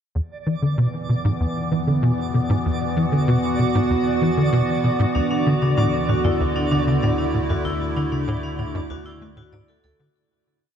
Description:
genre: ambient, sequencer-driven space music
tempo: 96 BPM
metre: 4/4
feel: straight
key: D major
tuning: A4 = 440 Hz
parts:
  - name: evolving wavetable pad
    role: sustained chords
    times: 0.8-10.2 s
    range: D3 to F#5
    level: -24 LUFS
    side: equal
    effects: chorus, built-in reverb
  - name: warm sub bass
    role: bass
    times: 0.1-10.1 s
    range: D2 to E2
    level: -34 LUFS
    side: equal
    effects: none
  - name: twinkling granular texture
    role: texture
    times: 0.3-10.2 s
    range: D5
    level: -30 LUFS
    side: right 4 dB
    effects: built-in reverb
  - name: tight sequencer bass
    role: riff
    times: 0.2-10.1 s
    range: D2 to A3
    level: -21 LUFS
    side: equal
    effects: ensemble chorus, ping-pong delay
  - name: vibraphone with hard mallets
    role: arpeggios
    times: 5.2-10.1 s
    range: D4 to D5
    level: -27 LUFS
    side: left 2 dB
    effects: auto-pan, ping-pong delay
room: wet huge ambient reverb, RT60 7.9 s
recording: dark, warm production, nothing above 10.4 kHz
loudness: -18 LUFS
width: side -8 dB against mid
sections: 0.2-10.2 A section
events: fade-in on sub bass 0.2-10.2; fade-out 6.8-10.2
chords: 0.2 Esus2; 5.2 D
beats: | 0.15 0.78 1.40 2.03 | 2.65 3.28 3.90 4.53 | 5.15 5.78 6.40 7.03 | 7.65 8.28 8.90 9.53

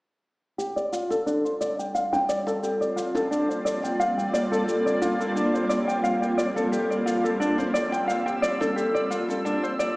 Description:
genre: organic downtempo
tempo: 88 BPM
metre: 4/4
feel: swing 54% on 16ths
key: G dorian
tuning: A4 = 445 Hz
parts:
  - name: granular cloud pad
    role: sustained chords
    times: 1.9-10.0 s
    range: G3 to E6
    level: -27 LUFS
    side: equal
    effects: built-in reverb
  - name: nylon-string guitar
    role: arpeggios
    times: 0.6-10.0 s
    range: D4 to G5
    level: -24 LUFS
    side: equal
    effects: low-pass filter, digital delay
  - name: shaker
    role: drums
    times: 0.6-9.9 s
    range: none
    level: -43 LUFS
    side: equal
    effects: none
  - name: djembe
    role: percussion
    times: 1.1-9.4 s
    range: none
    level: -34 LUFS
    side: equal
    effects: none
room: wet echo chamber reverb, RT60 2.1 s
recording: played on a big sound system in a bare room, large studio reverb, small speaker sound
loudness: -22 LUFS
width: side -23 dB against mid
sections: 0.6-10.0 A section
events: filter sweep on nylon-string guitar 0.6-10.0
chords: 0.6 Gm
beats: | 0.59 1.27 1.95 2.63 | 3.31 4.00 4.68 5.36 | 6.04 6.72 7.40 8.09 | 8.77 9.45

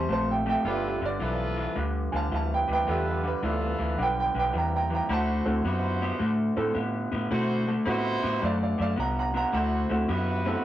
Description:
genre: blues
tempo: 108 BPM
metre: 4/4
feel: swing 66% on 8ths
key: unclear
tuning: A4 = 439 Hz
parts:
  - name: warm grand piano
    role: accompaniment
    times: 0.0-10.6 s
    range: A3 to Bb5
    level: -29 LUFS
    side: right 3 dB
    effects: none
  - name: electric guitar through a small old amp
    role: riff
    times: 0.0-10.6 s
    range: G2 to B3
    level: -29 LUFS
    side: left 1 dB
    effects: none
  - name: vintage muted fingered electric bass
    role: bass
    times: 0.0-10.5 s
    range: G1 to B2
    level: -31 LUFS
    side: equal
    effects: none
  - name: warm horn section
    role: stabs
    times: 0.7-10.6 s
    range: E4 to C5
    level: -32 LUFS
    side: right 1 dB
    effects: none
room: moderate studio reverb, RT60 0.6 s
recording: rough rehearsal-room recording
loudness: -24 LUFS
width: side -13 dB against mid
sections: 0.0-10.6 A section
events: none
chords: 0.0 C7; 0.7 G9; 5.1 D9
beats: 0.09 | 0.65 1.21 1.76 2.32 | 2.87 3.43 3.98 4.54 | 5.09 5.65 6.21 6.76 | 7.31 7.87 8.42 8.98 | 9.53 10.09 10.64

